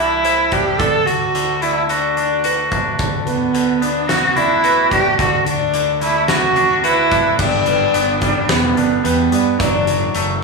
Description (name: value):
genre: post-rock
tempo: 109 BPM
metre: 4/4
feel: straight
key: unclear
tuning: A4 = 442 Hz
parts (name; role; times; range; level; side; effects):
- rich cello; melody; 0.0-10.1 s; B3 to A4; -16 LUFS; right 1 dB; none
- felt-muted upright piano; arpeggios; 0.0-10.1 s; B4 to E5; -25 LUFS; right 6 dB; none
- twangy electric guitar; arpeggios; 0.0-10.4 s; D3 to F#4; -21 LUFS; left 1 dB; none
- fuzz fingered electric bass; bass; 0.0-10.4 s; E1 to G2; -26 LUFS; equal; overdrive
- huge arena drum kit; drums; 0.2-10.3 s; crash cymbal, hi-hat, kick drum, snare drum; -22 LUFS; equal; none
room: wet large studio reverb, RT60 0.8 s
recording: band playing live in one room, small room ambience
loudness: -14 LUFS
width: side -3 dB against mid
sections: 0.0-7.4 A section; 7.4-10.4 B section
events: none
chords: 0.0 Cadd9; 0.8 D; 3.0 Bm/D; 5.2 D; 7.4 G; 9.6 D/F#